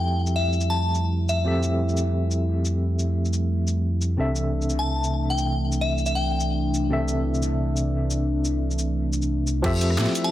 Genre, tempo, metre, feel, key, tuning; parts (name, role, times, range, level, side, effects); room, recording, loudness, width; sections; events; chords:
liquid drum and bass; 176 BPM; 4/4; swing 53% on 16ths; C major; A4 = 442 Hz
glassy synth bell; melody; 0.0-1.6, 4.8-6.6, 10.2-10.3 s; E5 to A5; -28 LUFS; left 3 dB; chorus, ping-pong delay
tine electric piano; accompaniment; 0.0-10.3 s; C3 to E5; -28 LUFS; equal; medium tremolo, dub echo
warm analog pad; sustained chords; 0.0-10.3 s; E3 to E4; -30 LUFS; right 2 dB; chorus, sidechain pumping
sub bass with octave; bass; 0.0-10.1 s; C2 to A2; -24 LUFS; equal
drum and bass drum kit; drums; 0.3-10.3 s; cabasa, crash cymbal, hi-hat, rim click, snare drum; -31 LUFS; left 1 dB; low-pass filter on perc, low-pass filter on hats, low-pass filter on cymbals, low-pass filter on snare
electronic kick drum; drums; 9.6-9.7 s; -28 LUFS; equal
light reverb, digital ambience; -21 LUFS; side -13 dB against mid
0.0-9.6 A section
filter sweep on tine electric piano 0.0-9.6; filter sweep on analog synth pad 0.0-9.6
0.0 Fmaj9; 4.2 C69; 9.6 Fmaj9